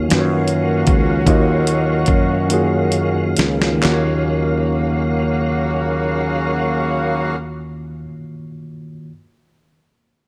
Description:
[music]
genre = slow six-eight R&B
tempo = 43-53 BPM (dotted quarters)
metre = 6/8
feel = straight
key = Eb minor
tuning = A4 = 441 Hz
[part]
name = mellow tine electric piano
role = accompaniment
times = 0.0-9.1 s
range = Eb3 to Eb5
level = -23 LUFS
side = equal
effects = none
[part]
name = tonewheel organ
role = sustained chords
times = 0.0-7.4 s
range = Eb3 to F5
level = -26 LUFS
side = equal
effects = overdrive, chorus vibrato, slow rotary speaker
[part]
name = sustaining fretless electric bass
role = bass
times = 0.0-8.1 s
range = Db2 to Gb2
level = -24 LUFS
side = equal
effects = none
[part]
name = warm horn section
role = stabs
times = 0.1-7.4 s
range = Db3 to Gb4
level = -26 LUFS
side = equal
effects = none
[part]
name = dusty soul sampler-style drum kit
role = drums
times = 0.1-4.1 s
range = handclaps, hi-hat, kick drum, snare drum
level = -21 LUFS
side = equal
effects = none
[sound]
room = light reverb, digital ambience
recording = none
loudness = -17 LUFS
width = mono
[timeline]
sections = 0.0-3.8 A section; 3.8-6.6 B section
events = slowing down 0.0-3.8; drum fill 2.5-3.8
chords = 0.0 Ebm9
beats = 0.10 | 1.27 2.50 | 3.83 5.21

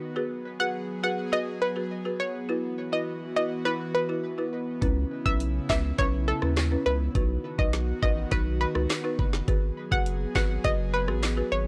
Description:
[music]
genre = dancehall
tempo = 103 BPM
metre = 4/4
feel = straight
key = unclear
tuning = A4 = 438 Hz
[part]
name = airy breathy pad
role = sustained chords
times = 0.0-11.7 s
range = C#3 to G#4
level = -37 LUFS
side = equal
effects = chorus, sidechain pumping
[part]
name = folk marimba with medium mallets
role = accompaniment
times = 0.2-11.6 s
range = C#4 to B4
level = -35 LUFS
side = equal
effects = none
[part]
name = analog pluck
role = melody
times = 0.6-11.6 s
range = A4 to F#5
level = -32 LUFS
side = equal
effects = chorus, tape echo
[part]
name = saturated sub bass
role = bass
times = 4.8-11.7 s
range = F#1 to D#2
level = -31 LUFS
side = equal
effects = none
[part]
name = island pop drum kit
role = drums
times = 4.8-11.4 s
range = handclaps, hi-hat, kick drum, rim click, snare drum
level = -30 LUFS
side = equal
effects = none
[sound]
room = digital ambience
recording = dry, gritty hardware recording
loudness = -27 LUFS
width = mono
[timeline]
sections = 0.0-11.7 A section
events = none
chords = 0.2 G#m7; 2.5 Esus2; 4.8 C#m7; 7.2 B; 9.5 G#m7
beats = | 0.16 0.74 1.33 1.91 | 2.49 3.07 3.66 4.24 | 4.82 5.40 5.99 6.57 | 7.15 7.73 8.32 8.90 | 9.48 10.06 10.65 11.23

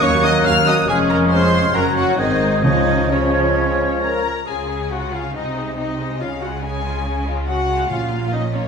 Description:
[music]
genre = quick classical-period movement for symphony orchestra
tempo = 128-143 BPM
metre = 4/4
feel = rubato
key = Db major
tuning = A4 = 440 Hz
[part]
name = warm studio violin section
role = melody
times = 0.0-8.7 s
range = Db5 to F6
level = -24 LUFS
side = left 4 dB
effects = none
[part]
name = mellow large flute ensemble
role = second line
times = 0.0-4.2 s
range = F6 to Ab6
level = -23 LUFS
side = equal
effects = none
[part]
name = rich studio violin section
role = second line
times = 0.0-8.7 s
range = Ab3 to F5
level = -28 LUFS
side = left 3 dB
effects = none
[part]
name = warm clarinet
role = second line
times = 0.0-4.2 s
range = C5 to Db5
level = -27 LUFS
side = left 2 dB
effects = none
[part]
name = warm cor anglais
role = second line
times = 0.0-4.2 s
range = Db4 to F5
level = -24 LUFS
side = right 2 dB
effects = none
[part]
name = clear bassoon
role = accompaniment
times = 0.0-4.2 s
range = Eb3 to Bb3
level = -23 LUFS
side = right 1 dB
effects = none
[part]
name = warm studio viola section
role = accompaniment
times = 0.0-8.6 s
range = Eb3 to Bb4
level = -24 LUFS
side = equal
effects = none
[part]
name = warm French horn section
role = sustained chords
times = 0.0-4.2 s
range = F3 to F4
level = -24 LUFS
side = left 3 dB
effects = none
[part]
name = dark studio double bass section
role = bass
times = 0.0-8.7 s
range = F1 to Eb2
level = -25 LUFS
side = right 2 dB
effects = none
[part]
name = warm studio cello section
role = bass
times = 0.0-8.7 s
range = Eb2 to Db3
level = -25 LUFS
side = right 2 dB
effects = none
[part]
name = timpani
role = percussion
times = 2.6-3.3, 7.9-8.5 s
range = Bb2 to Db3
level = -23 LUFS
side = right 2 dB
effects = none
[sound]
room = wet recital hall reverb, RT60 1.5 s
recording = minimal, uncompressed stereo recording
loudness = -16 LUFS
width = side -6 dB against mid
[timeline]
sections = 0.0-4.5 A section; 4.5-8.7 B section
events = none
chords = 0.0 Ebm7; 0.9 Db/F; 1.7 Gb; 2.2 Ab; 2.6 Db; 5.4 Ab/C; 6.2 Db; 7.9 Bbm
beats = 0.03 0.46 | 0.89 1.31 1.75 2.19 | 2.65 3.11 3.57 4.02 | 4.48 4.92 5.35 5.78 | 6.21 6.64 7.06 7.49 | 7.91 8.33

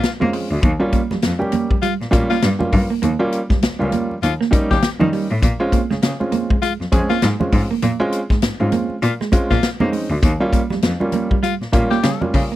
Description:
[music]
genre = funk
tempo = 100 BPM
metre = 4/4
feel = swing 60% on 16ths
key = unclear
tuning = A4 = 440 Hz
[part]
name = breathy tenor saxophone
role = second line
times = 0.0-12.3 s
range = F4 to G4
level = -21 LUFS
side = left 9 dB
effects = none
[part]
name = clean electric guitar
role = riff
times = 0.0-12.6 s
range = F3 to Bb3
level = -23 LUFS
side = right 6 dB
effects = none
[part]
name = swinging big-band drum kit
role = drums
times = 0.0-12.5 s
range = hi-hat, kick drum, snare drum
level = -20 LUFS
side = left 1 dB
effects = none
[part]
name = dark upright piano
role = stabs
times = 0.2-12.5 s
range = G3 to Ab4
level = -21 LUFS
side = right 1 dB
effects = none
[part]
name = clear cello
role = bass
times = 0.2-12.4 s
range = Db2 to Bb3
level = -21 LUFS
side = equal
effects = none
[part]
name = congas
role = percussion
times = 0.2-12.3 s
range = none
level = -28 LUFS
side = right 3 dB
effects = none
[sound]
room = light reverb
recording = dry, close 1970s-style studio recording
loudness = -16 LUFS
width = side -14 dB against mid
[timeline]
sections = 0.0-12.6 A section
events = none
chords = 0.0 Bbm9; 0.6 Eb9; 5.4 Bbm9; 10.2 Eb9 (rootless)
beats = 0.04 | 0.64 1.23 1.83 2.43 | 3.03 3.63 4.23 4.83 | 5.43 6.03 6.63 7.23 | 7.83 8.43 9.03 9.63 | 10.23 10.83 11.43 12.04

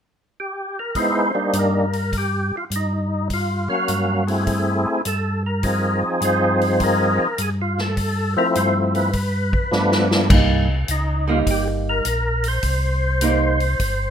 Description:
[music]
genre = soul jazz organ trio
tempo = 103 BPM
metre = 4/4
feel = swing 68% on 8ths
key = C minor from 10.3 s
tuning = A4 = 440 Hz
[part]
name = percussive tonewheel organ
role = melody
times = 0.4-14.1 s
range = F3 to E#5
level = -21 LUFS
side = equal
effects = slow rotary speaker, overdrive, chorus vibrato
[part]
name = swinging big-band drum kit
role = drums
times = 0.9-14.0 s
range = crash cymbal, hi-hat, kick drum, snare drum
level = -22 LUFS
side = equal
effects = none
[part]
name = mellow tonewheel organ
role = bass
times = 1.5-14.1 s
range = G1 to G2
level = -22 LUFS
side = equal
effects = slow rotary speaker
[part]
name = archtop guitar, miked and amplified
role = accompaniment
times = 10.3-13.6 s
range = G3 to Eb4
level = -22 LUFS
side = right 5 dB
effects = none
[sound]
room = light reverb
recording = minimal, uncompressed stereo recording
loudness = -18 LUFS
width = side -8 dB against mid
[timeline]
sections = 1.0-10.3 A section; 10.3-14.1 B section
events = drum fill 9.7-10.3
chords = 0.0 N.C.; 1.0 Cm9; 10.3 Cm7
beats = 0.37 | 0.96 1.54 2.13 2.71 | 3.30 3.88 4.47 5.05 | 5.64 6.22 6.80 7.39 | 7.97 8.56 9.14 9.72 | 10.30 10.89 11.47 12.05 | 12.63 13.21 13.79

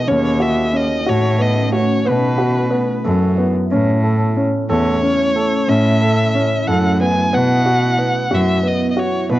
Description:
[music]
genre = contemporary instrumental, chamber music in an uneven meter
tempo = 182 BPM (eighths)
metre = 11/8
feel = straight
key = unclear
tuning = A4 = 441 Hz
[part]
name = rich violin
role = melody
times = 0.0-9.4 s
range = B4 to G#5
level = -20 LUFS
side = equal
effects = none
[part]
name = deep dark ambient pad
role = sustained chords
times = 0.0-9.4 s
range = D#3 to F#4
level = -23 LUFS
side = right 2 dB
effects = chorus, built-in reverb
[part]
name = dark baby grand piano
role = arpeggios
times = 0.1-9.4 s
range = B3 to A4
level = -20 LUFS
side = equal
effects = analog delay
[part]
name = rich cello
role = bass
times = 0.1-9.4 s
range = D#2 to B2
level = -18 LUFS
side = equal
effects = none
[sound]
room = moderate spring reverb, RT60 1.3 s, small room ambience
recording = worn, warbling old tape, cassette tape, warbly pitch drift, nothing above 7.5 kHz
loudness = -14 LUFS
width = side -15 dB against mid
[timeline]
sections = 0.0-3.7 A section; 3.7-9.4 B section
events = none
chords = 0.1 D#m7b5; 2.1 B7sus4; 3.7 A; 7.3 Bsus4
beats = | 0.07 0.40 0.73 1.06 1.39 1.72 2.05 2.38 2.71 3.04 3.37 | 3.70 4.03 4.36 4.69 5.02 5.35 5.68 6.01 6.34 6.67 7.00 | 7.33 7.66 7.99 8.32 8.65 8.98 9.31

